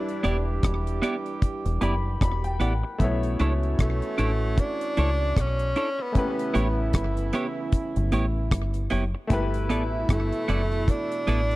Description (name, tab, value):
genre	lovers rock reggae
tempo	76 BPM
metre	4/4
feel	swing 58% on 16ths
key	B minor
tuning	A4 = 436 Hz
part	breathy tenor saxophone	melody	0.0-11.6 s	A3 to D4	-30 LUFS	equal	tape echo
part	mellow horn section	second line	0.0-11.6 s	B2 to C#5	-33 LUFS	right 2 dB	slapback echo
part	clear grand piano	accompaniment	0.0-11.6 s	G3 to B5	-33 LUFS	left 2 dB	slapback echo
part	deep reggae drum kit	drums	0.1-11.6 s	hi-hat, kick drum, rim click	-23 LUFS	equal	none
part	clean electric guitar	stabs	0.2-11.4 s	B3 to D5	-28 LUFS	right 2 dB	none
part	deep dub fingered electric bass	bass	0.2-11.6 s	E1 to C#2	-25 LUFS	equal	none
room	studio reverb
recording	dry, close 1970s-style studio recording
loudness	-23 LUFS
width	side -18 dB against mid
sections	0.0-11.6 A section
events	grand piano fill 1.4-3.0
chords	0.0 Em7; 3.0 Bm11; 6.2 A9; 9.3 G69